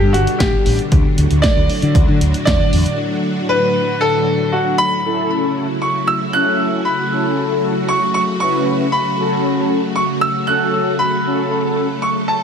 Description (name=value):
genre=synth-pop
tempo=116 BPM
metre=4/4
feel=straight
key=A major from 5.1 s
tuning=A4 = 441 Hz
part: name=clear concert grand piano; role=melody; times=0.0-12.4 s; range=F#4 to F#6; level=-18 LUFS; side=equal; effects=ping-pong delay
part: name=string machine, violas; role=sustained chords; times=0.0-12.4 s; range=A2 to A4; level=-20 LUFS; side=equal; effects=ensemble chorus
part: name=mellow fretless electric bass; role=bass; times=0.0-2.8 s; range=G1 to D3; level=-16 LUFS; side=left 1 dB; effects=lush chorus
part: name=punchy analog drum machine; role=drums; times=0.1-3.0 s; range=hi-hat, kick drum, snare drum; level=-16 LUFS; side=equal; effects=none
part: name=mellow synth brass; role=accompaniment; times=5.1-11.9 s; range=C#4 to B4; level=-20 LUFS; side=left 2 dB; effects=chorus
room=light reverb, digital ambience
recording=none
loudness=-14 LUFS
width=side -7 dB against mid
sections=0.0-5.1 A section; 5.1-12.4 B section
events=break 3.0-5.1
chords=0.0 G; 0.9 D; 5.1 A6; 9.2 F#m